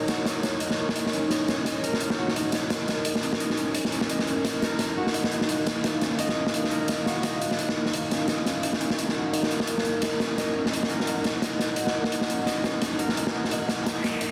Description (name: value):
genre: half-time drum and bass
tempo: 172 BPM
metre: 4/4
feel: swing 58% on 16ths, half-time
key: unclear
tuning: A4 = 436 Hz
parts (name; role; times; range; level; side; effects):
- deep dark ambient pad; sustained chords; 0.0-14.3 s; Eb4 to Gb5; -34 LUFS; equal; chorus, built-in reverb
- felt-muted upright piano; arpeggios; 0.0-14.3 s; Bb3 to Eb5; -33 LUFS; equal; low-pass filter, tape echo
- oversized low-tuned drum kit; drums; 0.1-14.3 s; hi-hat, snare drum; -28 LUFS; equal; none
- noise sweep; sound effects; 13.8-14.3 s; none; -36 LUFS; equal; none
room: wet digital room reverb, RT60 0.9 s, small room ambience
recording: dense, heavily limited modern master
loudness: -26 LUFS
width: mono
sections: 0.0-14.3 A section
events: noise sweep 13.8-14.3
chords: 0.0 Ebmadd9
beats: 0.26 0.61 | 0.96 1.31 1.66 2.00 | 2.35 2.70 3.05 3.40 | 3.75 4.10 4.45 4.80 | 5.14 5.49 5.84 6.19 | 6.54 6.89 7.24 7.59 | 7.94 8.28 8.63 8.98 | 9.33 9.68 10.03 10.38 | 10.73 11.07 11.42 11.77 | 12.12 12.47 12.82 13.17 | 13.52 13.87 14.21